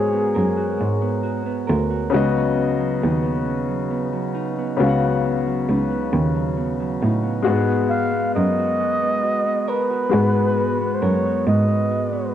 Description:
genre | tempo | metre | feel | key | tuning
slow six-eight R&B | 45 BPM (dotted quarters) | 6/8 | straight | G# minor | A4 = 440 Hz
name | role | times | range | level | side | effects
breathy flugelhorn | melody | 0.0-1.2, 7.9-12.3 s | G#4 to E#5 | -23 LUFS | right 1 dB | cassette tape, tape echo
mellow electric guitar | second line | 0.0-12.3 s | C#3 to A#4 | -26 LUFS | right 9 dB | cassette tape
clear concert grand piano | accompaniment | 0.0-12.3 s | C#3 to F#5 | -23 LUFS | left 6 dB | cassette tape
dark cello | bass | 0.0-12.3 s | C#2 to A2 | -22 LUFS | right 1 dB | transformer saturation
room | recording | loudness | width
light reverb | home recording on cassette | -18 LUFS | side -10 dB against mid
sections
0.0-12.3 A section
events
none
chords
0.0 G#m9; 2.1 C#9sus4; 7.5 G#m9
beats
0.79 | 2.12 3.46 | 4.79 6.12 | 7.46 8.79 | 10.12 11.46

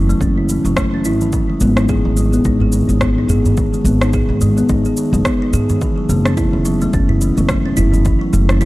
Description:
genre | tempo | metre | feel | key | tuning
organic downtempo | 107 BPM | 4/4 | swing 58% on 16ths | F# dorian | A4 = 440 Hz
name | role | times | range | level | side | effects
kalimba | arpeggios | 0.0-8.7 s | D#3 to G#4 | -16 LUFS | equal | low-pass filter, analog delay
upright bass | bass | 0.0-8.7 s | F#1 to G#2 | -16 LUFS | equal | sidechain pumping
electronic shaker and rim click | drums | 0.1-8.7 s | none | -24 LUFS | equal | overdrive
electronic kick drum | drums | 0.2-8.7 s | none | -20 LUFS | equal | overdrive
udu | percussion | 2.6-8.0 s | none | -20 LUFS | right 1 dB | none
room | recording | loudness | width
small room ambience | dry, gritty hardware recording | -13 LUFS | side -18 dB against mid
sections
0.0-8.7 A section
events
filter sweep on kalimba 0.0-8.7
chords
0.0 F#m7; 1.3 G#m; 5.8 F#m7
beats
0.21 0.77 | 1.33 1.89 2.45 3.01 | 3.57 4.13 4.69 5.25 | 5.82 6.38 6.94 7.50 | 8.06 8.62

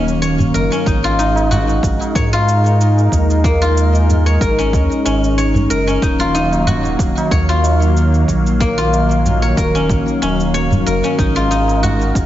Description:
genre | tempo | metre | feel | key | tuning
organic downtempo | 93 BPM | 4/4 | swing 54% on 16ths | Eb minor | A4 = 441 Hz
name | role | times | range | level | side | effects
warm analog pad | sustained chords | 0.0-12.3 s | Eb3 to F5 | -19 LUFS | equal | lush chorus, sidechain pumping
guzheng | arpeggios | 0.0-12.3 s | Bb3 to Db5 | -18 LUFS | left 2 dB | digital delay
warm sub bass | bass | 0.0-12.3 s | Eb1 to Ab2 | -16 LUFS | equal | sidechain pumping
shaker | drums | 0.1-12.3 s | none | -32 LUFS | right 3 dB | none
tabla | percussion | 0.4-12.0 s | none | -23 LUFS | right 1 dB | none
electronic kick drum | drums | 0.9-12.3 s | none | -19 LUFS | equal | none
room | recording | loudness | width
moderate echo chamber reverb, RT60 2.1 s | heavily compressed radio sound, nothing above 7.6 kHz | -12 LUFS | side -13 dB against mid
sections
0.0-12.3 A section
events
none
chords
0.0 Ebm9; 0.9 Absus2; 6.0 Ebm9; 11.2 Ab7sus2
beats
0.22 | 0.86 1.51 2.15 2.80 | 3.44 4.09 4.74 5.38 | 6.03 6.67 7.32 7.96 | 8.61 9.25 9.90 10.54 | 11.19 11.83

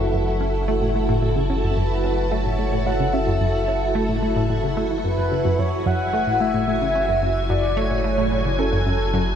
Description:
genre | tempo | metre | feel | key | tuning
ambient, sequencer-driven space music | 110 BPM | 4/4 | straight | F# minor | A4 = 441 Hz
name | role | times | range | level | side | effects
mellow horn-like synth lead | melody | 0.0-9.4 s | A4 to F#5 | -25 LUFS | left 1 dB | chorus, cassette tape, ping-pong delay
string machine, full ensemble | sustained chords | 0.0-9.4 s | E4 to G#5 | -24 LUFS | equal | ensemble chorus
analog pluck | riff | 0.0-9.2 s | F#2 to C#4 | -24 LUFS | equal | chorus, phaser, ping-pong delay
warm sub bass | bass | 0.0-9.4 s | F#1 | -26 LUFS | equal | none
room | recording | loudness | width
wet spring reverb, RT60 2.5 s | echo-heavy mix | -19 LUFS | side -8 dB against mid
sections
0.0-9.4 A section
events
filter sweep on synth arpeggio sound 0.0-9.4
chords
0.0 F#m7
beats
0.14 0.68 | 1.23 1.77 2.32 2.86 | 3.41 3.95 4.50 5.04 | 5.59 6.13 6.68 7.23 | 7.77 8.32 8.86

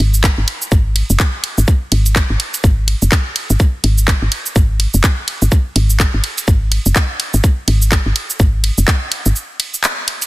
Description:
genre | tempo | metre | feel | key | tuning
minimal techno | 125 BPM | 4/4 | swing 60% on 16ths | unclear | A4 = 438 Hz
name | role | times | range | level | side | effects
woody FM bass | bass | 0.0-9.3 s | F#1 to G#1 | -14 LUFS | equal | sidechain pumping
garage drum kit | drums | 0.0-10.3 s | cabasa, handclaps, hi-hat, ride cymbal | -18 LUFS | right 1 dB | small room ambience
electronic kick drum | drums | 0.2-9.0 s | none | -12 LUFS | equal | small room ambience
room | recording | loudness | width
little or no reverb | dense, heavily limited modern master | -12 LUFS | side -19 dB against mid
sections
0.0-10.3 A section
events
break 9.4-10.3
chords
none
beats
0.24 | 0.72 1.20 1.68 2.16 | 2.64 3.12 3.60 4.08 | 4.56 5.04 5.52 6.00 | 6.48 6.96 7.44 7.92 | 8.40 8.88 9.36 9.84

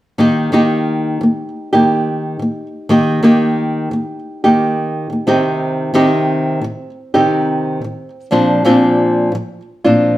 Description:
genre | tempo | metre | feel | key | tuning
pop | 88 BPM | 4/4 | swing 55% on 16ths | Eb major | A4 = 440 Hz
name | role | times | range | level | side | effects
nylon-string guitar | accompaniment | 0.2-10.2 s | Bb2 to G4 | -12 LUFS | equal | none
room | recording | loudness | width
wet stone room reverb, RT60 1.0 s | band playing live in one room | -13 LUFS | side -15 dB against mid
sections
0.2-10.2 A section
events
none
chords
0.2 Eb; 5.3 Cm; 8.3 Bbadd9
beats
| 0.18 0.86 1.53 2.21 | 2.89 3.57 4.25 4.92 | 5.60 6.28 6.96 7.63 | 8.31 8.99 9.66

